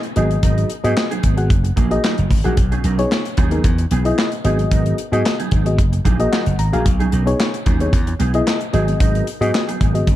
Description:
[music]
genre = early-eighties boogie funk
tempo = 112 BPM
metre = 4/4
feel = straight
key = unclear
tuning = A4 = 440 Hz
[part]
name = mellow FM electric piano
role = accompaniment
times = 0.0-10.1 s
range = A#3 to A#5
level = -22 LUFS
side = left 2 dB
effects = chorus
[part]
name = mellow electric guitar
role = riff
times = 0.0-10.1 s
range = E3 to A#4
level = -25 LUFS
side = right 6 dB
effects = ensemble chorus
[part]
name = modern studio drum kit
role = drums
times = 0.0-10.2 s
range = handclaps, hi-hat, kick drum, snare drum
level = -19 LUFS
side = equal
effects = none
[part]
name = slap bass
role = bass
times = 0.2-10.2 s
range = F#1 to G#2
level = -18 LUFS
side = equal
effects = none
[sound]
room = small room ambience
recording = dark, warm production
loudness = -15 LUFS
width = side -14 dB against mid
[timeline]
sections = 0.0-10.2 A section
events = FM electric piano fill 6.1-6.9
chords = 0.2 G#m7; 1.5 F#69; 2.6 B69; 3.6 Emaj7; 4.4 G#m7; 5.8 F#69; 6.9 B69; 7.9 Emaj7; 8.7 G#m7

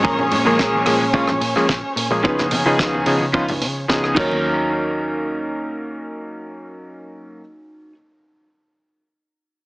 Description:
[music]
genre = nu-disco, nu disco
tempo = 109 BPM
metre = 4/4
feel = straight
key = Eb minor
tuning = A4 = 436 Hz
[part]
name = warm electric grand piano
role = accompaniment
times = 0.0-7.4 s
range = F3 to Bb4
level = -21 LUFS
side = equal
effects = sidechain pumping, digital delay
[part]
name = dark chamber string section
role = sustained chords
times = 0.0-4.2 s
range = Db4 to Db5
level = -24 LUFS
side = equal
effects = sidechain pumping
[part]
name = direct-recorded clean electric guitar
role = riff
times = 0.0-8.0 s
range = Db4 to Db5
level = -24 LUFS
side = right 1 dB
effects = wide subtle chorus, vintage 12-bit sampler grit, digital delay
[part]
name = hollow-body short-scale picked electric bass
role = bass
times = 0.0-6.1 s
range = Bb1 to Db3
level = -27 LUFS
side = equal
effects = tube saturation, sidechain pumping
[part]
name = kick drum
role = drums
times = 0.0-4.3 s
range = none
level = -21 LUFS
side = equal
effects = none
[part]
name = congas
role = percussion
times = 0.2-4.4 s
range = none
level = -30 LUFS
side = equal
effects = none
[part]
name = damped 70s drum kit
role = drums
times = 0.3-4.3 s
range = crash cymbal, hi-hat, rim click, snare drum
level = -25 LUFS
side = right 1 dB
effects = none
[sound]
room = light reverb, small room ambience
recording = small speaker sound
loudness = -16 LUFS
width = side -23 dB against mid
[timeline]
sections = 0.0-4.4 A section; 4.4-6.6 B section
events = drop 0.0-4.4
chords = 0.0 Bbm7; 2.2 Db9; 4.2 Ebm7

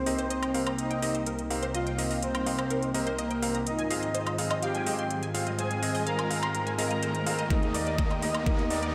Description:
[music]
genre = progressive house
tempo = 125 BPM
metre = 4/4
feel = straight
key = C minor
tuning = A4 = 442 Hz
[part]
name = soft supersaw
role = melody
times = 0.0-8.9 s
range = Bb3 to Bb5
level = -34 LUFS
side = equal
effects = sidechain pumping, tape echo
[part]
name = warm analog pad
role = sustained chords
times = 0.0-8.9 s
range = C2 to G4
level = -36 LUFS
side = equal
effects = chorus, sidechain pumping
[part]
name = riser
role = sound effects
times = 3.3-8.9 s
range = none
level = -42 LUFS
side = equal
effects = none
[part]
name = clear concert grand piano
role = stabs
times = 0.1-8.9 s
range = Bb3 to F5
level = -37 LUFS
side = equal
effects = sidechain pumping, low-pass filter, tape echo
[part]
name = electronic hi-hat and woodblock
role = drums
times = 0.1-8.9 s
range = none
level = -38 LUFS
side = equal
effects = studio reverb
[part]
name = unison pluck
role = arpeggios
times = 0.2-8.9 s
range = Bb4 to C6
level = -40 LUFS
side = equal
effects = analog chorus, sidechain pumping, tape echo
[part]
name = electronic kick drum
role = drums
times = 7.5-8.6 s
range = none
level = -29 LUFS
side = equal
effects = studio reverb
[sound]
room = wet plate reverb, RT60 2.2 s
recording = dreamy mix soaked in reverb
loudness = -29 LUFS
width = mono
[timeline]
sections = 0.0-8.9 A section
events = build-up 0.0-8.9; riser 3.3-8.9; drum fill 7.5-8.9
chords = 0.0 Cm7; 3.7 Ab6; 7.5 Ebmaj7

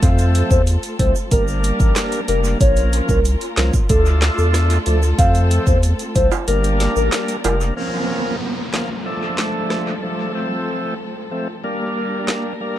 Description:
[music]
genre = dancehall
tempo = 93 BPM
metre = 4/4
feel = straight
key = F major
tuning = A4 = 440 Hz
[part]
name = hollow clarinet-like synth lead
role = melody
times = 0.0-7.6 s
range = A4 to F5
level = -23 LUFS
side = left 1 dB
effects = chorus, phaser, dub echo
[part]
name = tonewheel organ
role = accompaniment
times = 0.0-12.8 s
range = F3 to Bb4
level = -23 LUFS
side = equal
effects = overdrive, slow rotary speaker
[part]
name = dark studio string section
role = sustained chords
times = 0.0-12.8 s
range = F3 to Bb4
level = -27 LUFS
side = left 1 dB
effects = sidechain pumping
[part]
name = saturated sub bass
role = bass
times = 0.0-7.7 s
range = F1 to F2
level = -17 LUFS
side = equal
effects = none
[part]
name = afro-pop drum kit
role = drums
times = 0.0-12.4 s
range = handclaps, hi-hat, kick drum, rim click, snare drum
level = -19 LUFS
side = equal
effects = none
[part]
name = egg shaker and timbales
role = percussion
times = 0.0-7.8 s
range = none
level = -30 LUFS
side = right 7 dB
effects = dub echo
[part]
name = downlifter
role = sound effects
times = 7.8-12.8 s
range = none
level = -28 LUFS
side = right 2 dB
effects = none
[sound]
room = little or no reverb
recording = echo-heavy mix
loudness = -16 LUFS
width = side -12 dB against mid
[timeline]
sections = 0.0-7.8 A section; 7.8-12.8 B section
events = break 6.5-7.8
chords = 0.0 F; 1.3 Gm; 2.6 Bbm; 3.9 Dm; 5.2 F; 6.5 Gm; 7.8 Bbm; 9.1 Dm; 10.3 F; 11.6 Gm

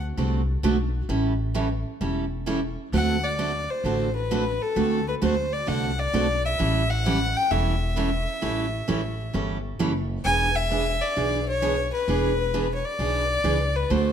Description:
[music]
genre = country, western swing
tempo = 131 BPM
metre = 4/4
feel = swing 67% on 8ths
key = unclear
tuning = A4 = 439 Hz
[part]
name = upright bass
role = bass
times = 0.0-14.1 s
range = E1 to D2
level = -27 LUFS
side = left 1 dB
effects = none
[part]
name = picked steel-string acoustic guitar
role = accompaniment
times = 0.2-14.1 s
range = D3 to A4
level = -26 LUFS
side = right 4 dB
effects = none
[part]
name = rich fiddle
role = melody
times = 2.9-14.1 s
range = A4 to G#5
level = -26 LUFS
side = left 2 dB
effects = none
[sound]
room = moderate echo chamber reverb, RT60 1.8 s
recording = none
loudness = -22 LUFS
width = side -8 dB against mid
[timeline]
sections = 0.0-14.1 A section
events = none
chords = 0.0 D7; 1.1 A7; 2.9 D7; 6.6 A7; 10.3 E7

